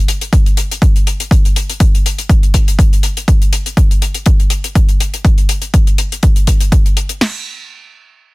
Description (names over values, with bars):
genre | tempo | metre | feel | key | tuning
nu-disco, nu disco | 122 BPM | 4/4 | swing 54% on 16ths | none | none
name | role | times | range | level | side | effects
hi-hat | drums | 0.1-7.2 s | none | -20 LUFS | left 4 dB | none
house drum kit | drums | 0.3-7.3 s | crash cymbal, kick drum, snare drum | -11 LUFS | equal | none
room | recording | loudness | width
little or no reverb | dense, heavily limited modern master | -10 LUFS | side -22 dB against mid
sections
0.0-7.2 A section; 7.2-8.3 B section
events
none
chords
none